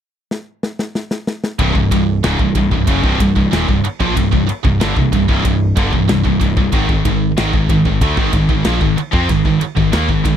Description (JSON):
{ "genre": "heavy metal", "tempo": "94 BPM", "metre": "4/4", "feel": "straight", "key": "C minor", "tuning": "A4 = 440 Hz", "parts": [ { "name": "modern studio drum kit", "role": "drums", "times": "0.3-10.4 s", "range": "kick drum, ride cymbal, snare drum", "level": "-18 LUFS", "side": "equal", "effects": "none" }, { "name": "heavy high-gain guitar", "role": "riff", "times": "1.6-10.4 s", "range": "C2 to C4", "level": "-20 LUFS", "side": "right 12 dB", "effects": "distortion" }, { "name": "scooped high-gain guitar", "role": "riff", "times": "1.6-10.4 s", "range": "C2 to C4", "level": "-20 LUFS", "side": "left 9 dB", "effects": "distortion" }, { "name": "scooped high-gain guitar", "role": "riff", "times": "1.6-10.4 s", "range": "C2 to C4", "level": "-20 LUFS", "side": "equal", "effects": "distortion" }, { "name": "growling picked electric bass", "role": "bass", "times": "1.6-10.4 s", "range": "C1 to F2", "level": "-19 LUFS", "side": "equal", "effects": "overdrive" } ], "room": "little or no reverb", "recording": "dry, close 1970s-style studio recording", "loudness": "-13 LUFS", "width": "side -9 dB against mid", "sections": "0.0-1.6 A section; 1.6-10.4 B section", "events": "drum fill 0.3-1.6", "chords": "0.0 N.C.; 1.6 C5; 6.7 Ab5" }